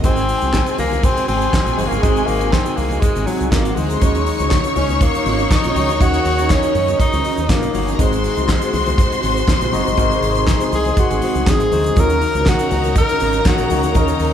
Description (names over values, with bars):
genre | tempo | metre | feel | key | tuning
disco | 121 BPM | 4/4 | straight | unclear | A4 = 441 Hz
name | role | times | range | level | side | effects
breathy tenor saxophone | melody | 0.0-14.3 s | Gb3 to Bb4 | -20 LUFS | left 2 dB | none
bright studio string section | second line | 0.0-14.3 s | C4 to Db6 | -23 LUFS | left 2 dB | none
barky tine electric piano | accompaniment | 0.0-14.3 s | Eb3 to Eb5 | -25 LUFS | left 4 dB | overdrive, phaser
mellow electric guitar | accompaniment | 0.0-14.2 s | C4 to C5 | -27 LUFS | right 6 dB | none
rich studio string section | sustained chords | 0.0-14.3 s | C3 to Ab4 | -26 LUFS | right 1 dB | none
fingered electric bass | bass | 0.0-14.3 s | Gb1 to Gb2 | -22 LUFS | equal | none
damped 70s drum kit | drums | 0.0-14.3 s | handclaps, hi-hat, kick drum, snare drum | -19 LUFS | equal | none
congas | percussion | 0.0-14.1 s | none | -31 LUFS | left 2 dB | none
egg shaker | percussion | 0.0-14.3 s | none | -38 LUFS | right 7 dB | none
room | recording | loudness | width
moderate large studio reverb, RT60 1.1 s | band playing live in one room | -14 LUFS | side -9 dB against mid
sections
0.0-14.3 A section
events
tenor saxophone solo 0.0-14.3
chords
0.0 Ab7; 4.0 Ebm7; 8.0 Ab7; 12.0 Ebm7